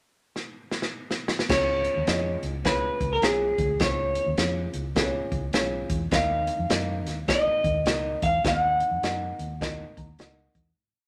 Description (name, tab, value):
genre	uptempo 1960s-style soul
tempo	104 BPM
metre	4/4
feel	swing 63% on 8ths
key	Db mixolydian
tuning	A4 = 436 Hz
part	swinging big-band drum kit	drums	0.4-10.7 s	crash cymbal, hi-hat, kick drum, snare drum	-30 LUFS	equal	none
part	electric guitar through a small old amp	melody	1.5-10.5 s	Ab4 to Gb5	-28 LUFS	equal	none
part	dark upright piano	accompaniment	1.5-10.7 s	Db3 to Bb5	-35 LUFS	equal	none
part	vintage muted fingered electric bass	bass	1.5-10.7 s	Cb2 to Gb2	-34 LUFS	equal	none
room	moderate studio reverb, RT60 0.5 s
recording	none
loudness	-26 LUFS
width	mono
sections	0.0-1.5 pickup bar; 1.5-10.8 verse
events	drum fill 0.3-1.5; fade-out 8.4-10.8; upright piano fill 9.6-10.8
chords	0.0 N.C.; 1.5 Db; 6.1 Ebm